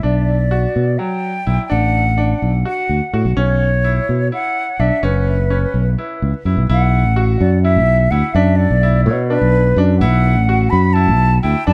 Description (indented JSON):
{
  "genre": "progressive instrumental, band music in an uneven meter",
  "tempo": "253 BPM (eighths)",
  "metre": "7/8",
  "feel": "straight",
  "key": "B minor",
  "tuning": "A4 = 440 Hz",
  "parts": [
    { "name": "mellow silver concert flute", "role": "melody", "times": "0.0-11.7 s", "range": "B4 to B5", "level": "-22 LUFS", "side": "equal", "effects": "plate reverb, digital delay" },
    { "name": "bright grand piano", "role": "arpeggios", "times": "0.0-11.7 s", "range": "F#3 to F#4", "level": "-25 LUFS", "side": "equal", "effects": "digital delay" },
    { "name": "fingered electric bass", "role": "bass", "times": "0.0-11.7 s", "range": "F#1 to B2", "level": "-16 LUFS", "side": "equal", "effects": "none" }
  ],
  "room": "light reverb",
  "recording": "dark, warm production",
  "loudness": "-15 LUFS",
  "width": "mono",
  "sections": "0.0-6.7 A section; 6.7-11.7 B section",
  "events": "none",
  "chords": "0.0 Bm7; 3.4 F#7sus4; 6.7 Bm7"
}